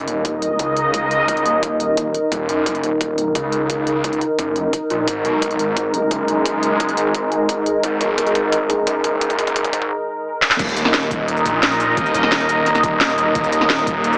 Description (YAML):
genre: dark technical drum and bass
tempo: 174 BPM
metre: 4/4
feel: straight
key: Eb minor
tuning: A4 = 440 Hz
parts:
  - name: sweeping resonant pad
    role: sustained chords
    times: 0.0-14.2 s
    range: Ab3 to Eb5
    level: -21 LUFS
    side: equal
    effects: chorus, sidechain pumping
  - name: snarling distorted saw bass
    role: bass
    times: 0.0-14.2 s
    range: Eb1 to Db2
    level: -25 LUFS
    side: equal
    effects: distortion, overdrive
  - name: drum and bass drum kit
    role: drums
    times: 0.1-14.2 s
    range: crash cymbal, hi-hat, shaker, snare drum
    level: -23 LUFS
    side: equal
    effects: none
  - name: electronic kick drum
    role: drums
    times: 0.2-13.9 s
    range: none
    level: -29 LUFS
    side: equal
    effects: overdrive, high-pass filter on kick, high-pass filter on room
room: moderate digital room reverb, RT60 1.1 s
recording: high-pass filter, small speaker sound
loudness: -19 LUFS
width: mono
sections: 0.0-10.6 A section; 10.6-14.2 B section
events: build-up 0.0-10.6; filter sweep 0.0-10.6; drum fill 5.1-9.9, 10.4; drop 10.6-14.2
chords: 0.0 Ebm7; 5.1 Abm; 10.6 Eb5